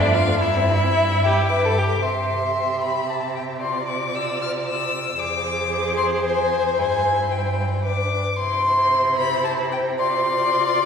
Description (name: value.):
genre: quick classical-period movement for string quartet.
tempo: 112 BPM.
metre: 3/4.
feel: straight.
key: C major.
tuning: A4 = 440 Hz.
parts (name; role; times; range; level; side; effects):
warm violin; melody; 0.0-10.9 s; D5 to F6; -22 LUFS; left 2 dB; none.
dark violin; second line; 0.0-10.9 s; A3 to E5; -25 LUFS; left 2 dB; none.
warm viola; accompaniment; 0.0-10.9 s; D4 to Ab4; -28 LUFS; right 2 dB; none.
rich cello; bass; 0.0-10.9 s; F2 to C3; -25 LUFS; right 2 dB; none.
room: wet concert hall reverb, RT60 2.2 s.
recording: recorded in a church or concert hall.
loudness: -19 LUFS.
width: side -6 dB against mid.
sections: 0.0-2.0 A section; 2.0-10.9 B section.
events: none.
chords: 0.4 C/G; 2.0 C; 3.6 Dm7/C; 5.2 Dm7b5/F; 6.8 C/G; 7.9 G; 8.4 C; 10.0 Dm7/C.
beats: | 0.41 0.96 1.50 | 2.04 2.58 3.11 | 3.63 4.15 4.68 | 5.20 5.72 6.25 | 6.78 7.32 7.86 | 8.40 8.94 9.47 | 10.01 10.54.